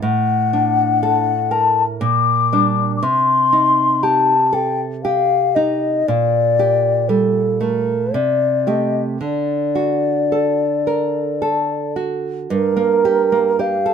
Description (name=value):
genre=romantic duo for flute and classical guitar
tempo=53-61 BPM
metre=3/4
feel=rubato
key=G minor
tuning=A4 = 440 Hz
part: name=mellow hollow concert flute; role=melody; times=0.0-13.9 s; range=A4 to D6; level=-16 LUFS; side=left 4 dB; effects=none
part: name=nylon-string guitar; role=accompaniment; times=0.0-13.9 s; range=G2 to Bb4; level=-20 LUFS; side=right 4 dB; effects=none
room=light reverb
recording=minimal, uncompressed stereo recording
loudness=-15 LUFS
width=side -7 dB against mid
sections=0.0-12.5 A section; 12.5-13.9 B section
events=none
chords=0.0 D/A; 2.0 Gm/Bb; 3.0 Cm; 6.1 Gm/Bb; 8.1 Cm69; 9.2 D; 12.5 Gm